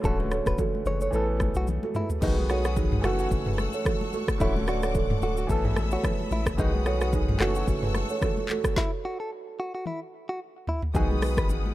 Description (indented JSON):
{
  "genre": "afrobeats",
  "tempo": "110 BPM",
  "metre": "4/4",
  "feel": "swing 55% on 16ths",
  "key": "unclear",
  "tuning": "A4 = 441 Hz",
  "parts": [
    { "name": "clear baby grand piano", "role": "accompaniment", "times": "0.0-11.7 s", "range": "D3 to A4", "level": "-33 LUFS", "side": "equal", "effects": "none" },
    { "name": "punchy sub bass", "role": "bass", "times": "0.0-11.7 s", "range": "D1 to B1", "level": "-28 LUFS", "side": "left 1 dB", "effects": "none" },
    { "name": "afro-pop drum kit", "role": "drums", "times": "0.0-11.6 s", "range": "crash cymbal, handclaps, hi-hat, kick drum, rim click, shaker, snare drum, toms", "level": "-28 LUFS", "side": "left 1 dB", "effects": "none" },
    { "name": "congas", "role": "percussion", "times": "0.0-11.7 s", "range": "none", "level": "-37 LUFS", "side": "left 2 dB", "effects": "none" },
    { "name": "direct-recorded clean electric guitar", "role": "melody", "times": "0.1-11.5 s", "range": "D#4 to C#5", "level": "-33 LUFS", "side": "equal", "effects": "vibrato effect, tape echo" },
    { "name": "kalimba", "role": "riff", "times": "0.2-11.3 s", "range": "D#4 to D5", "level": "-32 LUFS", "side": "right 6 dB", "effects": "none" },
    { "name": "rich studio string section", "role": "sustained chords", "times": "2.2-11.7 s", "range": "G#4 to E6", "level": "-38 LUFS", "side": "left 1 dB", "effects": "none" }
  ],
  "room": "small room ambience",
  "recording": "rough home demo mix",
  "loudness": "-24 LUFS",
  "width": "side -15 dB against mid",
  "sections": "0.0-2.2 A section; 2.2-10.9 B section",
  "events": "drum fill 1.7-2.2, 9.9-10.9; stop 8.8-10.9",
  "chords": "0.0 Dmaj7; 1.1 Asus2; 2.2 B6; 3.0 F#m7; 4.4 Dmaj7; 5.5 Asus2; 6.6 B6; 7.4 F#m7; 8.8 N.C.; 10.9 B6",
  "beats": "| 0.04 0.58 1.13 1.68 | 2.22 2.77 3.31 3.86 | 4.40 4.95 5.49 6.04 | 6.58 7.13 7.67 8.22 | 8.77 9.31 9.86 10.40 | 10.95 11.49"
}